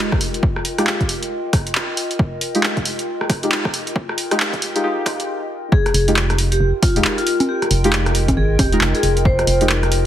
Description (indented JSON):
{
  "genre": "UK garage, two-step garage",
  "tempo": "136 BPM",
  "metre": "4/4",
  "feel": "swing 61% on 16ths",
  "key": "F minor",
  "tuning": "A4 = 440 Hz",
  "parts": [
    { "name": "warbly tape-like pad", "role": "texture", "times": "0.0-10.1 s", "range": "F4 to G5", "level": "-27 LUFS", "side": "left 1 dB", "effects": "chorus, built-in reverb, phaser, sidechain pumping" },
    { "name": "electronic kick drum", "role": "drums", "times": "0.1-9.4 s", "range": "none", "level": "-19 LUFS", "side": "equal", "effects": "none" },
    { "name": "punchy analog drum machine", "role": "drums", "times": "0.1-10.0 s", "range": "congas, handclaps, hi-hat, rim click", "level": "-21 LUFS", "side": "equal", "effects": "none" },
    { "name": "deep mellow chord stab", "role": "stabs", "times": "0.8-9.7 s", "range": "Ab3 to Bb4", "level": "-22 LUFS", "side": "equal", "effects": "chorus, ping-pong delay" },
    { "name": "vibraphone with medium hard mallets", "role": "melody", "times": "5.7-9.6 s", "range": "F4 to C5", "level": "-22 LUFS", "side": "moving between left 5 dB and right 4 dB", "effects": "auto-pan" },
    { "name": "organ-like FM bass", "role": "bass", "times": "5.9-10.1 s", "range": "Eb1 to Ab1", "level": "-18 LUFS", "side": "equal", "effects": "sidechain pumping" }
  ],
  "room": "light reverb",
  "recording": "heavily compressed radio sound, multiband compression, high-pass filter",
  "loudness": "-16 LUFS",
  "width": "side -11 dB against mid",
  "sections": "0.0-5.7 A section; 5.7-10.1 B section",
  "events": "build-up 0.0-5.7; stop 5.3-5.7; drop 5.7-10.1",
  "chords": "0.0 Fm9"
}